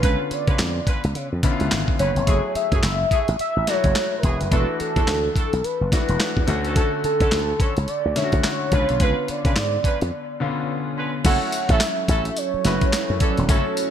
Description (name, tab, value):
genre	R&B, new jack swing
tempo	107 BPM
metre	4/4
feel	swing 60% on 16ths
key	F# minor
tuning	A4 = 439 Hz
part	warm velvety synth lead	melody	0.0-13.9 s	A4 to F#5	-25 LUFS	right 1 dB	chorus
part	clear baby grand piano	accompaniment	0.0-13.9 s	D3 to C#5	-27 LUFS	left 4 dB	lush chorus
part	warm horn section	stabs	0.0-13.6 s	A3 to B4	-31 LUFS	right 2 dB	none
part	slap bass with an envelope filter	bass	0.0-13.6 s	E1 to D3	-24 LUFS	equal	none
part	dusty soul sampler-style drum kit	drums	0.0-13.9 s	crash cymbal, handclaps, hi-hat, kick drum, snare drum, tambourine	-22 LUFS	equal	none
part	brassy analog pad	sustained chords	11.2-13.9 s	F#3 to A4	-29 LUFS	right 4 dB	chorus
room	light reverb, digital ambience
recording	bright 1980s-style digital production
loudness	-19 LUFS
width	side -9 dB against mid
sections	0.0-11.2 A section; 11.2-13.9 B section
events	break 10.1-11.2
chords	0.0 C#7b9; 2.3 F#m9; 4.5 E9sus4; 6.5 Dmaj7; 8.7 C#7b9; 11.2 F#m7